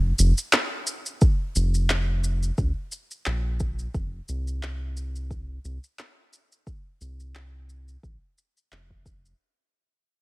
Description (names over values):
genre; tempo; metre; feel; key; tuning
organic downtempo; 88 BPM; 4/4; swing 56% on 16ths; unclear; A4 = 444 Hz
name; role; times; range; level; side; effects
round analog bass; bass; 0.0-9.3 s; F1 to Db2; -25 LUFS; equal; sidechain pumping
electronic shaker and handclaps; drums; 0.2-9.4 s; none; -25 LUFS; equal; none
electronic kick drum; drums; 1.2-9.2 s; none; -23 LUFS; equal; none
room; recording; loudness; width
little or no reverb; none; -23 LUFS; side -21 dB against mid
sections
0.0-9.4 A section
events
fade-out 0.0-9.4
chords
none